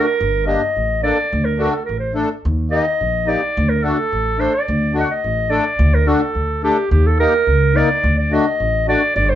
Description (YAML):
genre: klezmer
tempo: 107 BPM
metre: 2/4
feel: straight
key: D phrygian dominant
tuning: A4 = 442 Hz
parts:
  - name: warm clarinet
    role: melody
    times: 0.0-9.4 s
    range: G4 to F#5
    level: -18 LUFS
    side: right 1 dB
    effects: none
  - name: accordion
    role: accompaniment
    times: 0.0-9.0 s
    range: A3 to Bb4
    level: -20 LUFS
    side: left 3 dB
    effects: light tremolo tuning
  - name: upright bass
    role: bass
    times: 0.2-9.4 s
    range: G1 to Eb2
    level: -18 LUFS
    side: equal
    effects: none
room: wet studio reverb, RT60 0.6 s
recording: band playing live in one room, nothing above 7.7 kHz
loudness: -15 LUFS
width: side -11 dB against mid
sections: 0.0-5.8 A section; 5.8-9.4 A section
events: none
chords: 0.2 Gm; 1.3 D; 2.4 Eb; 3.6 D; 6.9 Eb5; 8.0 D